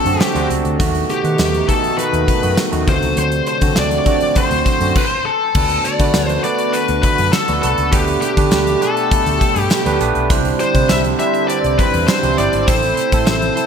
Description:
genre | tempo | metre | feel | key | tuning
1980s-style pop | 101 BPM | 4/4 | straight | unclear | A4 = 439 Hz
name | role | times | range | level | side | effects
high-gain lead guitar | melody | 0.0-13.7 s | G4 to E5 | -18 LUFS | left 2 dB | distortion
barky tine electric piano | accompaniment | 0.0-13.7 s | D3 to F#5 | -20 LUFS | right 5 dB | analog chorus
sweeping resonant pad | sustained chords | 0.0-13.7 s | B2 to G4 | -27 LUFS | equal | chorus, phaser
vintage muted fingered electric bass | bass | 0.1-13.5 s | G1 to D#3 | -21 LUFS | left 1 dB | none
gated 80s drum kit | drums | 0.1-13.7 s | crash cymbal, hi-hat, kick drum, snare drum, tambourine | -18 LUFS | equal | none
tambourine | percussion | 0.2-13.4 s | none | -34 LUFS | left 9 dB | none
room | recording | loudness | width
wet lush hall reverb, RT60 1.6 s, studio reverb | bright 1980s-style digital production | -13 LUFS | side -7 dB against mid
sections
0.0-5.6 A section; 5.6-13.7 B section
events
none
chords
0.0 D7; 0.8 B7/D#; 2.9 D7; 5.6 D6; 7.9 Gadd9/D; 10.3 Cadd9; 12.7 Am

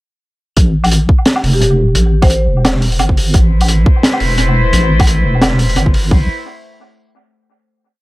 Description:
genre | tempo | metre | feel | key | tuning
half-time drum and bass | 173 BPM | 4/4 | swing 55% on 16ths, half-time | A minor | A4 = 440 Hz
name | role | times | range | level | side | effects
deep soft wobble bass | bass | 0.6-6.3 s | E1 to A1 | -12 LUFS | equal | chorus
crunchy breakbeat drum kit | drums | 0.6-6.0 s | hi-hat, snare drum, woodblock | -16 LUFS | equal | tape echo
electronic kick drum | drums | 0.6-6.2 s | none | -11 LUFS | equal | none
marimba with medium hard mallets | melody | 1.5-2.6 s | G4 to C5 | -20 LUFS | equal | dub echo
warm studio cello section | sustained chords | 3.3-6.3 s | A3 to C5 | -19 LUFS | left 1 dB | sidechain pumping
room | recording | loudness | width
light reverb, small room ambience | echo-heavy mix | -10 LUFS | side -19 dB against mid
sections
0.6-6.1 drop; 6.1-7.5 final chord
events
drop 0.6-6.1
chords
0.6 Amadd9

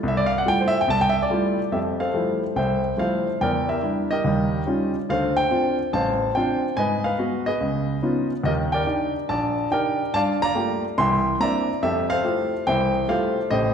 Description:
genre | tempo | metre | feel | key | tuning
solo jazz | 143 BPM | 4/4 | swing 64% on 8ths | F major | A4 = 440 Hz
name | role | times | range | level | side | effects
warm grand piano | solo | 0.0-13.7 s | A1 to C6 | -20 LUFS | equal | none
room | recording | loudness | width
wet recital hall reverb, RT60 1.5 s | recorded in a church or concert hall | -20 LUFS | side -7 dB against mid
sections
0.0-1.7 A section; 1.7-13.7 B section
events
grand piano solo 0.0-1.7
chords
0.0 Fmaj9; 3.4 Em7b5; 4.2 Eb9; 5.1 Dm7; 6.8 Abm7; 7.6 Db9; 8.4 Ebmaj7; 10.1 Gm9; 11.0 C9; 11.8 Fmaj9

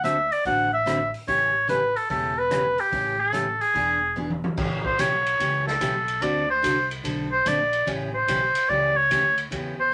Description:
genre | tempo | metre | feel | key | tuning
country, western swing | 146 BPM | 4/4 | swing 66% on 8ths | A mixolydian | A4 = 441 Hz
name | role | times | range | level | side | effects
warm oboe | melody | 0.0-9.9 s | G4 to F#5 | -24 LUFS | equal | none
picked steel-string acoustic guitar | accompaniment | 0.0-9.7 s | C#3 to A4 | -33 LUFS | equal | none
upright bass | bass | 0.0-9.9 s | E1 to E2 | -38 LUFS | equal | none
swinging big-band drum kit | drums | 0.0-9.6 s | crash cymbal, hi-hat, kick drum, ride cymbal, rim click, snare drum, toms | -35 LUFS | equal | none
room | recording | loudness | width
moderate small room reverb, RT60 0.5 s | none | -23 LUFS | mono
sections
0.0-4.6 A section; 4.6-9.9 B section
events
drum fill 4.2-4.6; oboe solo 4.6-9.9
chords
0.0 D9; 1.3 A9; 3.8 E7; 4.6 A9; 6.2 D7; 7.9 A9

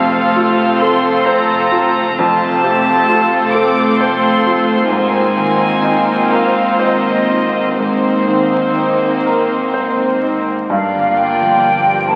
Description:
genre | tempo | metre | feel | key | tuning
cinematic, emotional film score for orchestra | 40-45 BPM (dotted quarters) | 6/8 | rubato | unclear | A4 = 439 Hz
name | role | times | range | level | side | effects
warm studio violin section | melody | 0.0-12.2 s | C5 to D6 | -22 LUFS | equal | none
dark studio violin section | second line | 0.0-12.2 s | Eb4 to C5 | -22 LUFS | equal | none
clear grand piano | accompaniment | 0.0-12.2 s | F2 to C5 | -20 LUFS | equal | none
warm studio viola section | accompaniment | 0.0-12.2 s | A3 to C4 | -21 LUFS | equal | none
concert harp | arpeggios | 0.0-12.2 s | F2 to D5 | -32 LUFS | equal | none
dark studio double bass section | bass | 0.0-12.2 s | F1 to Ab1 | -32 LUFS | equal | none
rich chamber cello section | bass | 0.0-12.2 s | G2 to A4 | -24 LUFS | equal | none
hollow small flute group | second line | 10.7-12.2 s | F5 to A5 | -15 LUFS | equal | none
room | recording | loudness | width
wet concert hall reverb, RT60 2.2 s | very old 78 rpm record, vinyl crackle | -14 LUFS | mono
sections
0.0-10.7 A section; 10.7-12.2 B section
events
none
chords
0.0 F; 4.9 Abadd9; 10.7 Gm7

